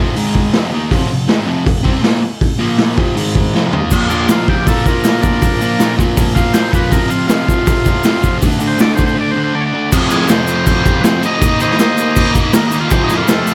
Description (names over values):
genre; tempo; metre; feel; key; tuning
garage rock duo or trio; 160 BPM; 4/4; straight; unclear; A4 = 440 Hz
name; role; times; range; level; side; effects
fuzz guitar; riff; 0.0-13.5 s; F2 to Eb4; -19 LUFS; equal; distortion
raw garage drum kit; drums; 0.2-13.5 s; crash cymbal, hi-hat, kick drum, snare drum, toms; -16 LUFS; equal; none
tube shaker; percussion; 3.9-13.5 s; none; -31 LUFS; equal; none
combo organ; melody; 4.1-13.5 s; A3 to F5; -21 LUFS; equal; none
room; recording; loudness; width
light reverb, small room ambience; none; -14 LUFS; mono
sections
0.0-3.9 A section; 3.9-9.9 B section; 9.9-13.5 C section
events
drum fill 3.5-3.9; break 9.2-9.9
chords
0.2 Ab5; 0.5 F5; 2.6 Bb5; 3.0 F5; 3.2 Ab5; 3.5 F5; 3.9 Bb; 6.9 F5; 8.4 D5; 9.9 F5; 11.4 Eb5; 12.9 F